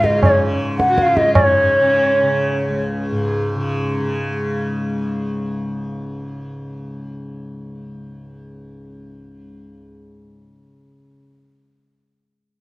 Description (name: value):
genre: indian classical, Hindustani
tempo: 160 BPM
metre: 4/4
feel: straight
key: unclear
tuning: A4 = 439 Hz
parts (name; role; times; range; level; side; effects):
- bansuri; melody; 0.0-2.8 s; Db5 to Gb5; -15 LUFS; equal; none
- rich sarangi; second line; 0.0-2.9 s; Db4 to Gb4; -26 LUFS; left 2 dB; none
- tanpura; drone; 0.0-11.1 s; Db2 to Db3; -24 LUFS; equal; none
- tabla; percussion; 0.0-1.5 s; none; -18 LUFS; right 1 dB; none
room: moderate recital hall reverb, RT60 1.4 s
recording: worn, warbling old tape, cassette tape, warbly pitch drift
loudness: -16 LUFS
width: side -20 dB against mid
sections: 0.0-1.4 A section; 1.4-4.3 B section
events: speeding up 0.0-4.3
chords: none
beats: 0.22 0.60 0.98 | 1.36 1.73 2.11 2.48 | 2.86 3.23 3.60 3.97